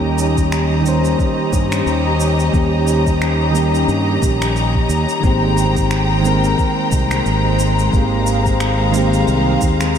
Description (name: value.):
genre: sunset chillout.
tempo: 89 BPM.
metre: 4/4.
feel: swing 57% on 16ths.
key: unclear.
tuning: A4 = 440 Hz.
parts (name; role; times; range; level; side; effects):
soft electric-piano-like synth keys; accompaniment; 0.0-10.0 s; Eb3 to C5; -19 LUFS; right 1 dB; chorus, auto-pan, low-pass filter, analog delay.
rich studio string section; sustained chords; 0.0-10.0 s; Ab3 to Bb5; -20 LUFS; left 2 dB; none.
fretless electric bass; bass; 0.0-10.0 s; Ab1 to G2; -18 LUFS; equal; none.
electronic shaker and finger snaps; drums; 0.2-10.0 s; none; -28 LUFS; right 1 dB; none.
electronic kick drum; drums; 0.4-9.8 s; none; -19 LUFS; equal; none.
room: moderate huge ambient reverb, RT60 8.1 s.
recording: dreamy mix soaked in reverb.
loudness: -14 LUFS.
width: side -8 dB against mid.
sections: 0.0-10.0 A section.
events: none.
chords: 0.0 Eb7; 5.2 Abmaj9.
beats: 0.52 1.19 1.86 | 2.54 3.21 3.89 4.56 | 5.24 5.91 6.58 7.26 | 7.93 8.61 9.28 9.96.